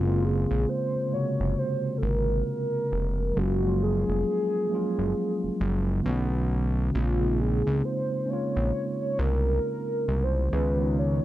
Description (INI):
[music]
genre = hip hop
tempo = 67 BPM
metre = 4/4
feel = swing 61% on 16ths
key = unclear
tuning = A4 = 441 Hz
[part]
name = warbly nostalgic lead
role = melody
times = 0.0-11.2 s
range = F4 to Db5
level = -30 LUFS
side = equal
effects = chorus, plate reverb
[part]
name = mellow tine electric piano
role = accompaniment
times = 0.0-11.2 s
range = C3 to Gb4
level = -28 LUFS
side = right 1 dB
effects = fast stereo tremolo
[part]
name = fat analog bass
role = bass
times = 0.0-11.2 s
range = F1 to Db2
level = -26 LUFS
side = equal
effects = none
[sound]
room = light reverb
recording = dark, warm production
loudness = -24 LUFS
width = side -14 dB against mid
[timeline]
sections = 0.0-11.2 A section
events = none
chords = 0.0 Gbmaj9#11; 3.4 Gbmaj9/F; 6.0 Bm9; 6.9 Bbm9; 10.5 Db7